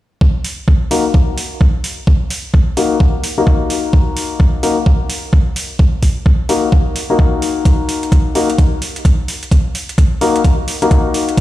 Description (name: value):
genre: bass house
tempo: 129 BPM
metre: 4/4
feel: swing 62% on 16ths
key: Eb minor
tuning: A4 = 440 Hz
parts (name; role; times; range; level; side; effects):
- electronic kick drum; drums; 0.2-11.4 s; none; -11 LUFS; equal; overdrive
- electronic hi-hat; drums; 0.4-11.4 s; none; -25 LUFS; right 2 dB; overdrive
- clear grand piano; stabs; 0.9-11.4 s; Bb3 to Bb4; -17 LUFS; left 4 dB; sidechain pumping, low-pass filter, ping-pong delay
room: light reverb, studio ambience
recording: played on a big sound system in a bare room, stone room reverb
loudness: -12 LUFS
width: side -15 dB against mid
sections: 0.2-11.4 A section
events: none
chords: 0.2 Ebm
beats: | 0.21 0.68 1.14 1.61 | 2.07 2.54 3.00 3.47 | 3.93 4.40 4.86 5.33 | 5.79 6.26 6.72 7.19 | 7.65 8.12 8.58 9.05 | 9.52 9.98 10.45 10.91 | 11.38